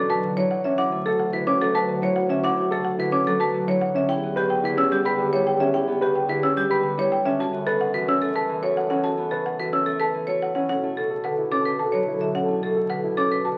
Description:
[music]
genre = classical, minimalist pattern music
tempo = 109 BPM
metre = 3/4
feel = straight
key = unclear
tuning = A4 = 440 Hz
[part]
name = marimba with medium hard mallets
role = melody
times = 0.0-13.5 s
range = G4 to A5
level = -28 LUFS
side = equal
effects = none
[part]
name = mellow French horn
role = second line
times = 0.0-13.5 s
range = D4 to A4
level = -32 LUFS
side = equal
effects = none
[part]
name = concert harp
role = accompaniment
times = 0.0-13.6 s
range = B2 to B3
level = -34 LUFS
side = equal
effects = none
[part]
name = mellow bass clarinet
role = bass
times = 0.0-13.6 s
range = D2 to B2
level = -35 LUFS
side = equal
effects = none
[part]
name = dark grand piano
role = arpeggios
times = 0.1-13.6 s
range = C#4 to B4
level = -30 LUFS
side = equal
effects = none
[part]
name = xylophone with rubber mallets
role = arpeggios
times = 0.1-13.6 s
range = F#5 to E6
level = -29 LUFS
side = equal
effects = none
[sound]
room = wet large studio reverb, RT60 1.1 s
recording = very old 78 rpm record, vinyl crackle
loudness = -23 LUFS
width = mono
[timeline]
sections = 0.0-10.7 A section; 10.7-13.6 B section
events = none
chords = 0.0 Bm11; 0.8 Dmaj9; 4.1 Em7; 7.4 F#m7; 10.7 Bm11

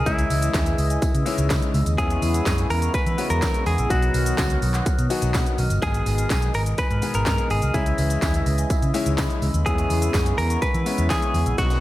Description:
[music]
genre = dance-pop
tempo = 125 BPM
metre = 4/4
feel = straight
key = unclear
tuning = A4 = 440 Hz
[part]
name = direct-recorded clean electric guitar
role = melody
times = 0.0-11.8 s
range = E4 to B4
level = -27 LUFS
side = equal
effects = spring reverb, tape echo
[part]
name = warm analog pad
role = sustained chords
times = 0.0-11.8 s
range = B2 to D#5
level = -31 LUFS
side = right 1 dB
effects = chorus, sidechain pumping
[part]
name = vintage muted fingered electric bass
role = bass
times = 0.0-11.8 s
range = G1 to E3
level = -23 LUFS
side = equal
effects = sidechain pumping
[part]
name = clear baby grand piano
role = accompaniment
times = 0.1-11.8 s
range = F#3 to B5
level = -29 LUFS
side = left 6 dB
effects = none
[part]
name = vibraphone with medium mallets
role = arpeggios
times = 0.1-11.7 s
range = F#5 to E#6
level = -35 LUFS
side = left 1 dB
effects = sidechain pumping, tape echo
[part]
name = house drum kit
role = drums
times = 0.1-11.8 s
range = handclaps, hi-hat, kick drum, shaker, snare drum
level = -24 LUFS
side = equal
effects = overdrive
[part]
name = tambourine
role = percussion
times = 0.1-11.7 s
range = none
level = -43 LUFS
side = right 7 dB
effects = none
[sound]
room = digital ambience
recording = none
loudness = -19 LUFS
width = side -15 dB against mid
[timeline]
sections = 0.0-11.8 A section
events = grand piano fill 4.9-5.8, 8.9-9.7; drum fill 11.6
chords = 0.1 C#madd9; 2.0 E6; 3.9 B; 5.8 G#m; 7.7 C#madd9; 9.7 E6

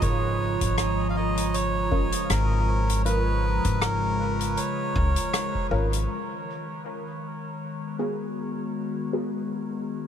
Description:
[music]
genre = ambient dub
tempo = 79 BPM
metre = 4/4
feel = swing 56% on 16ths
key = G# dorian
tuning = A4 = 438 Hz
[part]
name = melodica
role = melody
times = 0.0-5.7 s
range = A#4 to E#5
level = -30 LUFS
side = right 2 dB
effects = dub echo
[part]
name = warbly tape-like pad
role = sustained chords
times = 0.0-10.1 s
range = C#3 to A#5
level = -30 LUFS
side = left 1 dB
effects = chorus, built-in reverb
[part]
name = upright bass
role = bass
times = 0.0-6.1 s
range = G#1 to C#2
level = -26 LUFS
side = equal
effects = none
[part]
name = electronic kick drum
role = drums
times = 0.0-5.7 s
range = none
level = -28 LUFS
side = equal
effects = none
[part]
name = soft-mallet drum kit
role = drums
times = 0.0-6.1 s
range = hi-hat, rim click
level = -31 LUFS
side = left 2 dB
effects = none
[part]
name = filtered dub chord stab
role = stabs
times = 1.9-9.3 s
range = B3 to A#4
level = -35 LUFS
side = equal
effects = phaser, vintage 12-bit sampler grit, dub echo
[sound]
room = light reverb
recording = none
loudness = -24 LUFS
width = side -9 dB against mid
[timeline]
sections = 0.0-6.1 A section; 6.1-10.1 B section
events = none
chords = 0.0 A#m/G#; 6.1 G#m7

